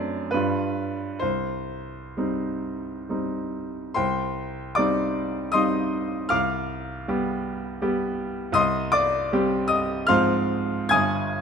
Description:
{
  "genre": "classical, romantic character piece for solo piano",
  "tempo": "63-82 BPM",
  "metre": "3/4",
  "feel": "rubato",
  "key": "C minor",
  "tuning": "A4 = 440 Hz",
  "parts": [
    { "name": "bright baby grand piano", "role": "solo", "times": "0.0-11.4 s", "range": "G1 to Ab6", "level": "-23 LUFS", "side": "equal", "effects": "none" }
  ],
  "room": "light reverb",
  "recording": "close, detailed microphones",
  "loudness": "-22 LUFS",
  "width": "side -6 dB against mid",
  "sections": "0.0-4.0 A section; 4.0-11.4 A section",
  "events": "none",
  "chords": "0.3 G7; 1.2 Cm; 6.3 G7/C; 8.6 Cm; 10.1 Fm/Ab",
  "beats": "0.34 | 1.22 2.16 3.09 | 3.96 4.77 5.54 | 6.31 7.08 7.81 | 8.55 9.32 10.10 | 10.92"
}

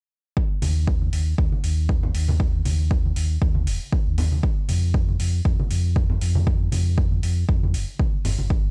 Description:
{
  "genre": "deep house",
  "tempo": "118 BPM",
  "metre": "4/4",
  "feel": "swing 55% on 16ths",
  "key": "unclear",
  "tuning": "A4 = 440 Hz",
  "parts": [
    { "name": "electronic kick drum", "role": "drums", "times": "0.4-8.6 s", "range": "none", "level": "-25 LUFS", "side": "equal", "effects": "overdrive, studio ambience" },
    { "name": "sub bass with octave", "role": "bass", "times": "0.6-8.7 s", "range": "Eb1 to F2", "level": "-24 LUFS", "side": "equal", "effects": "sidechain pumping" },
    { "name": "electronic hi-hat", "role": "drums", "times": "0.6-8.4 s", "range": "none", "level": "-38 LUFS", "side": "equal", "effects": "overdrive, studio ambience" },
    { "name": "congas", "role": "percussion", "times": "0.6-8.5 s", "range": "none", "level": "-33 LUFS", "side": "equal", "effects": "sidechain pumping on perc" }
  ],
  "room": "little or no reverb",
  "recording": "dry, gritty hardware recording, cassette tape",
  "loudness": "-22 LUFS",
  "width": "mono",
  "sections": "0.4-8.7 A section",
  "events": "none",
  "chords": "none",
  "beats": "| 0.37 0.88 1.38 1.89 | 2.40 2.91 3.42 3.93 | 4.43 4.94 5.45 5.96 | 6.47 6.98 7.49 7.99 | 8.50"
}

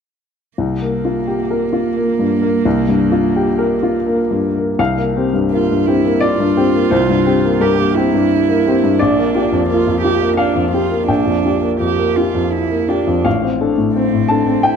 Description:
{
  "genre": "neoclassical piano and strings",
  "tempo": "86 BPM",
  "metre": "3/4",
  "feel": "rubato",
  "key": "unclear",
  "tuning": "A4 = 439 Hz",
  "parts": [
    { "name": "dark cello", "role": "second line", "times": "0.6-14.8 s", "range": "Bb3 to G4", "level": "-19 LUFS", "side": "right 10 dB", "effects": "none" },
    { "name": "clear upright piano", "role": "accompaniment", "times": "0.6-14.8 s", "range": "A1 to A5", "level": "-14 LUFS", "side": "left 3 dB", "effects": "none" }
  ],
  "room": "moderate scoring stage reverb, RT60 1.9 s",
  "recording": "dark, warm production",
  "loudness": "-13 LUFS",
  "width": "side -7 dB against mid",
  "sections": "0.6-4.8 A section; 4.8-14.8 B section",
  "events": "none",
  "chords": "0.6 C7sus4; 9.0 Gm7/Bb; 13.3 Dm7/A",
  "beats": "| 0.57 1.27 1.96 | 2.65 3.34 4.06 | 4.79 5.50 6.20 | 6.91 7.60 8.30 | 8.99 9.67 10.37 | 11.08 11.80 12.53 | 13.25 13.95 14.64"
}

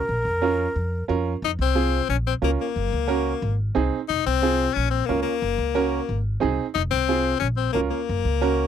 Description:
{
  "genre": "latin",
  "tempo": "180 BPM",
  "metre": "4/4",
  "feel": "straight",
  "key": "Bb minor",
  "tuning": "A4 = 440 Hz",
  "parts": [
    { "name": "breathy concert flute", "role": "melody", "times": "0.0-1.0 s", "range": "Bb4", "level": "-25 LUFS", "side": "equal", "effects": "none" },
    { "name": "upright bass", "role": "bass", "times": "0.0-8.7 s", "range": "F1 to F2", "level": "-26 LUFS", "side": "equal", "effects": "none" },
    { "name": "clear upright piano", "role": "accompaniment", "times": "0.4-8.7 s", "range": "C4 to Bb4", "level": "-24 LUFS", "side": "right 8 dB", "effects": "none" },
    { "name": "edgy tenor saxophone", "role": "second line", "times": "1.4-8.7 s", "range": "Bb3 to Eb4", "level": "-24 LUFS", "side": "left 14 dB", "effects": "none" }
  ],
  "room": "little or no reverb",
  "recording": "dry, close 1970s-style studio recording",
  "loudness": "-21 LUFS",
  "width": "side -9 dB against mid",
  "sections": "0.0-1.4 A section; 1.4-8.7 B section",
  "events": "tenor saxophone solo 1.4-8.7",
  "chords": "0.1 Bbm; 1.4 Fm; 2.1 Bbm; 2.8 Gb; 3.4 Ab; 4.1 Fm; 4.8 Bbm; 5.4 Gb; 6.1 Ab; 6.8 Fm; 7.4 Bbm; 8.1 Gb",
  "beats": "| 0.08 0.42 0.75 1.08 | 1.42 1.75 2.09 2.42 | 2.75 3.09 3.42 3.75 | 4.09 4.42 4.75 5.09 | 5.42 5.75 6.09 6.42 | 6.75 7.09 7.42 7.75 | 8.09 8.42"
}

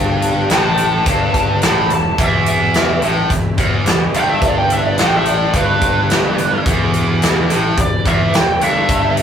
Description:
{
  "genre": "blues rock power trio and southern rock",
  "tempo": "107 BPM",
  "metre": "4/4",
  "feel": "straight",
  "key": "E minor",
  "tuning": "A4 = 442 Hz",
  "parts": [
    { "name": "overdriven tonewheel organ", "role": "sustained chords", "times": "0.0-9.2 s", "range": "E4 to E5", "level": "-30 LUFS", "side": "right 2 dB", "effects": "none" },
    { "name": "tight distorted guitar", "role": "riff", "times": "0.0-9.2 s", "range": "E2 to A2", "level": "-18 LUFS", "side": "left 1 dB", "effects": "distortion" },
    { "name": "fuzz fingered electric bass", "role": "bass", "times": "0.0-9.2 s", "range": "E1 to A1", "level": "-22 LUFS", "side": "equal", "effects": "overdrive" },
    { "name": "big rock drum kit", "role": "drums", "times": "0.2-9.2 s", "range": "hi-hat, kick drum, snare drum", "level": "-16 LUFS", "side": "equal", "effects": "none" },
    { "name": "lead guitar through a small cranked amp", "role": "melody", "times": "0.5-9.2 s", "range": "B4 to B5", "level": "-18 LUFS", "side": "right 2 dB", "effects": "wah, overdrive" }
  ],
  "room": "moderate studio reverb, RT60 0.6 s",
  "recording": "rough rehearsal-room recording, warm saturation",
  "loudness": "-12 LUFS",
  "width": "side -8 dB against mid",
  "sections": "0.0-9.2 A section",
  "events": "none",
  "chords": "0.0 Em",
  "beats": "0.50 1.06 1.62 | 2.18 2.75 3.31 3.87 | 4.42 4.98 5.54 6.10 | 6.66 7.21 7.77 8.33 | 8.88"
}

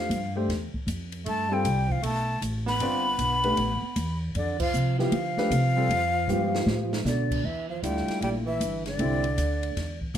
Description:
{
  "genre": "modal jazz",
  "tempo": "155 BPM",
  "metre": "4/4",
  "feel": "swing 64% on 8ths",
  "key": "unclear",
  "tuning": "A4 = 438 Hz",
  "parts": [
    { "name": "breathy mellow silver concert flute", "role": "melody", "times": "0.0-10.0 s", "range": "D5 to B5", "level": "-29 LUFS", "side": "left 2 dB", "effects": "none" },
    { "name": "breathy tenor saxophone", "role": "second line", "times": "0.0-10.0 s", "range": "D3 to B3", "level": "-32 LUFS", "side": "right 6 dB", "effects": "none" },
    { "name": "warm grand piano", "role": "accompaniment", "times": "0.0-10.2 s", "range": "D3 to D5", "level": "-30 LUFS", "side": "left 1 dB", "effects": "none" },
    { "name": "upright bass", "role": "bass", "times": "0.0-10.2 s", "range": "G1 to D3", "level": "-28 LUFS", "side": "equal", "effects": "none" },
    { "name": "open jazz drum kit", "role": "drums", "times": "0.1-10.2 s", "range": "crash cymbal, hi-hat, kick drum, ride cymbal, snare drum, toms", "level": "-36 LUFS", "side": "equal", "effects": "none" }
  ],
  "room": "moderate studio reverb, RT60 0.7 s",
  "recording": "none",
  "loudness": "-24 LUFS",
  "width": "side -10 dB against mid",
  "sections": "0.0-7.4 A section; 7.4-10.2 B section",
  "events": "band accent 4.6; drum fill 6.3-7.1",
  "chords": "0.0 Dm7; 1.3 G9; 4.4 Dm7; 7.4 C9",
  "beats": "0.11 0.50 0.88 | 1.27 1.66 2.04 2.43 | 2.81 3.20 3.59 3.97 | 4.36 4.74 5.13 5.52 | 5.90 6.29 6.67 7.06 | 7.45 7.83 8.22 8.61 | 8.99 9.38 9.77 10.15"
}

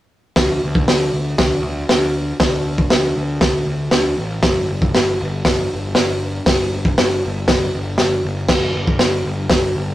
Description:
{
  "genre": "garage rock duo or trio",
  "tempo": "118 BPM",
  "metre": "4/4",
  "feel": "straight",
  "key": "unclear",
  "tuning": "A4 = 436 Hz",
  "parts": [
    { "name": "fuzz picked electric bass", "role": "bass", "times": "0.4-9.9 s", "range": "G1 to D2", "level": "-22 LUFS", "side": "equal", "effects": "overdrive, tube saturation" },
    { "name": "crunchy breakbeat drum kit", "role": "drums", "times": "0.4-9.6 s", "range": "crash cymbal, hi-hat, kick drum, snare drum", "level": "-16 LUFS", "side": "equal", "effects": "none" }
  ],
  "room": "light reverb",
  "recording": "rough rehearsal-room recording, tube saturation",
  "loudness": "-15 LUFS",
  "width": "side -14 dB against mid",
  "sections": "0.4-9.9 A section",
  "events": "none",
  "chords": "none",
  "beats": "| 0.37 0.88 1.39 1.90 | 2.40 2.91 3.42 3.93 | 4.44 4.94 5.45 5.96 | 6.47 6.98 7.49 7.99 | 8.50 9.01 9.52"
}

